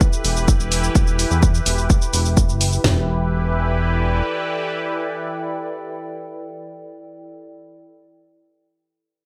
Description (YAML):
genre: melodic techno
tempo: 127 BPM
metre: 4/4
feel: straight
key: E minor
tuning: A4 = 440 Hz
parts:
  - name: sweeping resonant pad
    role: sustained chords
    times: 0.0-7.4 s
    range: E3 to B4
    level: -28 LUFS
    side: equal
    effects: chorus, sidechain pumping
  - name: fat analog bass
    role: bass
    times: 0.0-4.2 s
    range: E1 to E2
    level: -23 LUFS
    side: equal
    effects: sidechain pumping
  - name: electronic shaker and hi-hat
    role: drums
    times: 0.0-2.8 s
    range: none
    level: -26 LUFS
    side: equal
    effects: none
  - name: house drum kit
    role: drums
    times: 0.0-3.0 s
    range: kick drum, snare drum, toms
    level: -19 LUFS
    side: equal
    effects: none
  - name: warbly tape-like pad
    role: texture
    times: 0.0-7.4 s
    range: E4 to D6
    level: -34 LUFS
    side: equal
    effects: chorus, built-in reverb, sidechain pumping
room: little or no reverb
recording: bright 1980s-style digital production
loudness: -20 LUFS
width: mono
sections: 0.0-2.8 A section; 2.8-6.6 B section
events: none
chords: 0.0 Em